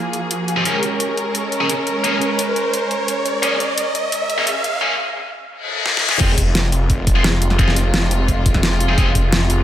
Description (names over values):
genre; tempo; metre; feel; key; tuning
dark technical drum and bass; 173 BPM; 4/4; straight; F minor; A4 = 440 Hz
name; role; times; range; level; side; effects
rich symphonic string section; sustained chords; 0.0-9.6 s; C3 to Bb4; -22 LUFS; equal; sidechain pumping
riser and reverse cymbal; sound effects; 0.0-6.2 s; none; -23 LUFS; equal; none
dubstep drum kit; drums; 0.1-9.6 s; crash cymbal, hi-hat, snare drum; -21 LUFS; equal; overdrive, small room ambience
heavy high-gain guitar; stabs; 0.6-9.1 s; Bb3 to Ab4; -23 LUFS; left 1 dB; distortion, low-pass filter, dub echo
snarling distorted saw bass; bass; 6.2-9.6 s; F1; -18 LUFS; equal; distortion, tube saturation
electronic kick drum; drums; 6.2-9.2 s; none; -17 LUFS; equal; small room ambience
room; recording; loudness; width
light reverb; high-pass filter; -15 LUFS; side -11 dB against mid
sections
0.0-6.2 A section; 6.2-9.6 B section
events
build-up 0.0-6.2; riser 0.0-4.8; filter sweep 0.0-6.2; reverse cymbal 5.6-6.2; drum fill 5.9-6.2; drop 6.2-9.6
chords
0.0 Fm; 0.7 Bbm7; 6.2 Fm